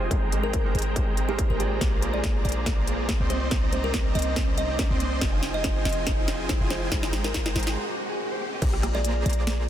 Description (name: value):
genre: future bass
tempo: 141 BPM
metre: 4/4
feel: swing 54% on 16ths, half-time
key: unclear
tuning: A4 = 440 Hz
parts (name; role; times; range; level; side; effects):
- kalimba; melody; 0.0-9.4 s; G4 to Eb5; -33 LUFS; equal; sidechain pumping, dub echo
- felt-muted upright piano; accompaniment; 0.0-2.0 s; Ab3 to D5; -36 LUFS; right 5 dB; sidechain pumping, tape echo
- airy breathy pad; sustained chords; 0.0-7.8 s; C3 to G5; -40 LUFS; right 1 dB; chorus, sidechain pumping
- supersaw chords; riff; 0.0-9.7 s; Ab3 to C6; -32 LUFS; right 1 dB; cassette tape, sidechain pumping, low-pass filter, tape echo
- warm 808-style bass; bass; 0.0-9.7 s; F1 to C2; -29 LUFS; equal; sidechain pumping
- riser; sound effects; 0.7-8.6 s; none; -37 LUFS; right 1 dB; none
- electronic kick drum; drums; 0.1-8.7 s; none; -27 LUFS; equal; distortion
- trap drum kit; drums; 0.1-9.6 s; crash cymbal, hi-hat, rim click, snare drum; -31 LUFS; equal; none
- Celtic harp; arpeggios; 1.8-9.7 s; Bb3 to Eb5; -37 LUFS; left 1 dB; sidechain pumping, tape echo
room: little or no reverb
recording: dense, heavily limited modern master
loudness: -23 LUFS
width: side -11 dB against mid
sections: 0.0-8.6 A section; 8.6-9.7 B section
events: build-up 0.0-8.6; riser 0.7-8.6; drum fill 1.8-7.8; break 7.8-8.6; drop 8.6-9.7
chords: 0.1 Abmaj7; 1.8 Bb7; 3.3 Cm7; 5.2 Fm7; 6.9 Abmaj7; 8.6 Bb7